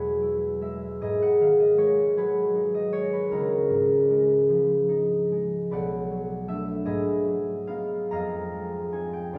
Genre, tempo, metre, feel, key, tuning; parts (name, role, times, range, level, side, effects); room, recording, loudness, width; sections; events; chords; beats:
classical, solo harp piece; 50 BPM (dotted quarters); 6/8; uneven beats, rubato; A4 = 440 Hz
concert harp; solo; 0.0-9.4 s; B1 to A#5; -25 LUFS; equal
wet church reverb, RT60 2.8 s; heard from further back in the room; -25 LUFS; mono
0.0-9.4 A section
0.0 E69; 1.0 G#m7; 3.3 C#69; 5.7 Bm7; 6.9 G#m7; 8.1 Fm7
| 1.00 2.16 | 3.29 4.46 | 5.71 6.87 | 8.13 9.33